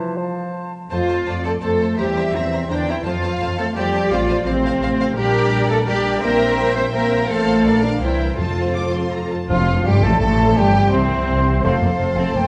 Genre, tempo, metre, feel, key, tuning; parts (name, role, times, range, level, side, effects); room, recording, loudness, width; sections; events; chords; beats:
classical; 169 BPM; 3/4; straight; F major; A4 = 445 Hz
clear oboe; second line; 0.0-0.7, 9.5-11.8 s; C5 to A5; -29 LUFS; equal
small flute group; second line; 0.0-0.7, 9.5-12.5 s; C5 to A5; -27 LUFS; equal
warm bassoon; accompaniment; 0.0-0.7, 9.5-11.8 s; C3 to A3; -29 LUFS; equal
dark French horn section; sustained chords; 0.0-12.5 s; C3 to C5; -26 LUFS; equal
concert harp; arpeggios; 0.0-12.5 s; A2 to C6; -31 LUFS; equal
clear symphonic violin section; melody; 0.9-12.5 s; C4 to Bb5; -32 LUFS; equal
clear symphonic violin section; second line; 0.9-12.5 s; C4 to D6; -32 LUFS; equal
warm symphonic viola section; accompaniment; 0.9-12.4 s; A3 to C5; -29 LUFS; equal
clear symphonic double bass section; bass; 0.9-12.4 s; F1 to F2; -24 LUFS; equal
rich symphonic cello section; bass; 0.9-12.4 s; C2 to C5; -24 LUFS; equal
timpani; percussion; 8.4-10.0 s; F2; -29 LUFS; equal
warm trombone section; sustained chords; 9.5-12.5 s; C3 to A3; -30 LUFS; equal
wet scoring stage reverb, RT60 1.6 s; dark, warm production, nothing above 10.3 kHz; -18 LUFS; mono
0.9-9.5 A section; 9.5-12.5 A section
0.0 F; 2.0 C7/E; 3.1 F; 4.1 F/A; 5.2 Gm/Bb; 6.2 C7/Bb; 7.3 F/A; 7.7 Bbmaj7; 8.0 C7; 8.4 F; 10.6 C7/G; 11.6 F
0.17 0.54 | 0.91 1.27 1.62 | 1.98 2.34 2.70 | 3.06 3.41 3.77 | 4.12 4.47 4.83 | 5.18 5.53 5.88 | 6.23 6.59 6.94 | 7.29 7.65 8.02 | 8.38 8.76 9.13 | 9.50 9.86 10.22 | 10.57 10.93 11.28 | 11.64 11.99 12.35